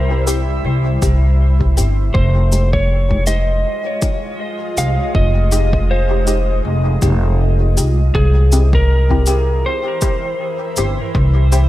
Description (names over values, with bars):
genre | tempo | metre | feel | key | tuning
ambient dub | 80 BPM | 4/4 | swing 56% on 16ths | F minor | A4 = 443 Hz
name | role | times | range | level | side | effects
electric slide guitar | melody | 0.0-11.7 s | Ab4 to F5 | -22 LUFS | equal | dub echo
granular cloud pad | sustained chords | 0.0-11.7 s | E3 to E5 | -26 LUFS | equal | built-in reverb
upright bass | bass | 0.0-11.7 s | F1 to C2 | -14 LUFS | equal | none
filtered dub chord stab | stabs | 0.1-11.7 s | Ab3 to G4 | -26 LUFS | left 3 dB | phaser, dub echo
cabasa | drums | 0.3-11.7 s | none | -24 LUFS | left 1 dB | none
electronic kick drum | drums | 1.0-11.3 s | none | -18 LUFS | equal | overdrive
room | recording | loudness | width
studio reverb | none | -13 LUFS | side -15 dB against mid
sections
0.0-11.7 A section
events
none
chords
0.0 C; 2.1 Fm7; 8.1 C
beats
0.65 1.40 | 2.15 2.90 3.65 4.40 | 5.15 5.90 6.65 7.40 | 8.15 8.90 9.65 10.40 | 11.15